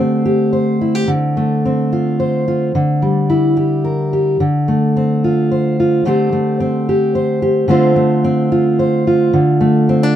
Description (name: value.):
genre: folk, solo fingerstyle acoustic guitar.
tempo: 109 BPM.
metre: 3/4.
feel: straight.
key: D minor.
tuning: A4 = 440 Hz.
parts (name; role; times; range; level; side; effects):
fingerpicked steel-string acoustic guitar; solo; 0.0-10.2 s; D3 to C5; -12 LUFS; equal; none.
room: light reverb.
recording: minimal, uncompressed stereo recording.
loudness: -12 LUFS.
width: side -10 dB against mid.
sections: 0.0-10.2 A section.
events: none.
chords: 0.0 Am7/D; 1.1 Dm7; 2.7 C7/D; 4.4 Dm7; 6.1 Am7/D; 7.7 Dm7.